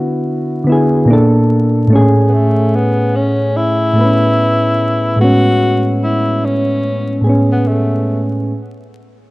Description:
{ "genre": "lo-fi hip hop", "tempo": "73 BPM", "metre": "4/4", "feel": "swing 60% on 16ths", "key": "A major", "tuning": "A4 = 439 Hz", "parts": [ { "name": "soft electric-piano-like synth keys", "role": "accompaniment", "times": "0.0-8.5 s", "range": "A2 to B4", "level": "-12 LUFS", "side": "equal", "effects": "chorus, cassette tape, low-pass filter" }, { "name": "breathy tenor saxophone", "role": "melody", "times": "2.3-8.3 s", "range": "A3 to F#4", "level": "-16 LUFS", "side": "left 1 dB", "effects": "low-pass filter" } ], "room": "moderate plate reverb, RT60 3.6 s", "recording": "dark, warm production, vinyl crackle", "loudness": "-11 LUFS", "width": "side -20 dB against mid", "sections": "0.0-8.5 A section", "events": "none", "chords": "0.0 D69; 1.1 Bbmaj7; 1.9 Amaj9" }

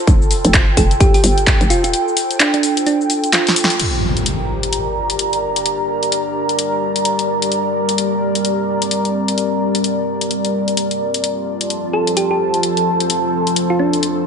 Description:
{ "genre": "bass house", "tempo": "129 BPM", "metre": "4/4", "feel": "swing 60% on 16ths", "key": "G minor", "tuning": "A4 = 441 Hz", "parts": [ { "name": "airy breathy pad", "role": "texture", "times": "0.0-14.3 s", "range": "F4 to Bb5", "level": "-19 LUFS", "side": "equal", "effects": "chorus, sidechain pumping" }, { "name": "hollow knocking FM bass", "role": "bass", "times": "0.1-1.9 s", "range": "F1 to G1", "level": "-18 LUFS", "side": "equal", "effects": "tube saturation, sidechain pumping" }, { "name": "electronic kick drum", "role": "drums", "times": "0.1-1.6 s", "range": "none", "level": "-13 LUFS", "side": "equal", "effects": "small room ambience" }, { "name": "house drum kit", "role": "drums", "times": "0.1-14.1 s", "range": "crash cymbal, handclaps, hi-hat, shaker, snare drum", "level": "-18 LUFS", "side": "left 2 dB", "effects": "small room ambience" }, { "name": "thumb-piano-like synth pluck", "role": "melody", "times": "0.8-3.8, 11.9-14.3 s", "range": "D4 to A4", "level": "-19 LUFS", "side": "right 2 dB", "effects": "chorus, tape echo" }, { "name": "deep dark ambient pad", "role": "sustained chords", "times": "5.2-14.3 s", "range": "F3 to Bb4", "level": "-22 LUFS", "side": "equal", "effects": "chorus, built-in reverb, sidechain pumping" }, { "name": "impact", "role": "sound effects", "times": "3.8-5.7 s", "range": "none", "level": "-22 LUFS", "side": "equal", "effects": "none" } ], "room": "moderate lush hall reverb, RT60 2.1 s", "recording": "nothing above 10.4 kHz", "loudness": "-14 LUFS", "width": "side -6 dB against mid", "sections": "0.0-3.8 A section; 3.8-14.3 B section", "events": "break 1.9-3.8; drum fill 3.3-3.8; band accent 3.6; impact 3.8-5.7", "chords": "0.0 F; 3.8 Gm; 11.2 F" }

